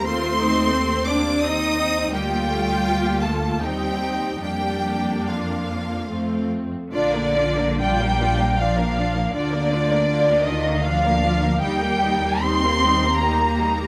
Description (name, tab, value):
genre	classical, slow romantic movement for string orchestra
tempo	66-88 BPM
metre	3/4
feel	rubato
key	Bb major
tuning	A4 = 440 Hz
part	clear symphonic violin section	melody	0.0-13.9 s	G4 to Eb6	-30 LUFS	equal	none
part	warm symphonic violin section	second line	0.0-13.9 s	F4 to C6	-26 LUFS	equal	none
part	clear symphonic viola section	accompaniment	0.0-13.9 s	G3 to G4	-28 LUFS	equal	none
part	rich symphonic cello section	bass	0.0-13.9 s	D3 to Eb4	-29 LUFS	equal	none
part	rich symphonic double bass section	bass	0.0-13.9 s	Bb1 to F2	-28 LUFS	equal	none
room	moderate concert hall reverb, RT60 2.4 s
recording	none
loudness	-21 LUFS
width	mono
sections	0.0-6.9 A section; 6.9-13.9 B section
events	none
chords	0.1 F7/Eb; 2.1 Bb/D; 3.6 Eb; 4.4 Fsus4; 6.1 F; 6.9 Bb; 9.3 Bb/D; 11.6 Eb